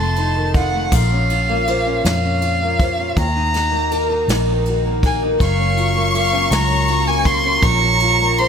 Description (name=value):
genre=six-eight pop ballad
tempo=54 BPM (dotted quarters)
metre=6/8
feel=straight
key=Bb minor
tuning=A4 = 438 Hz
part: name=warm violin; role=melody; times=0.0-8.5 s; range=F5 to Db6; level=-19 LUFS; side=right 1 dB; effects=none
part: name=warm studio violin section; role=second line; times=0.0-0.5, 5.4-8.5 s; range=Bb5 to Db6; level=-23 LUFS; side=left 3 dB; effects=none
part: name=fingerpicked steel-string acoustic guitar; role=accompaniment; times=0.0-8.5 s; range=F2 to C5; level=-21 LUFS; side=left 1 dB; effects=double-tracked left and right
part: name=vintage muted fingered electric bass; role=bass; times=0.0-8.5 s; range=F1 to F2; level=-20 LUFS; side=equal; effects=none
part: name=jazz brush drum kit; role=drums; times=0.2-8.5 s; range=crash cymbal, kick drum, ride cymbal, snare drum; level=-23 LUFS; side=equal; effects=none
room=small room ambience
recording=none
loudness=-14 LUFS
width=side -7 dB against mid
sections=0.9-8.5 A section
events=none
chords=0.0 F7; 0.9 Bbmadd9; 3.2 Ebm; 5.4 Gbmaj7; 7.6 Bbm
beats=| 0.92 2.05 | 3.17 4.28 | 5.40 6.51 | 7.63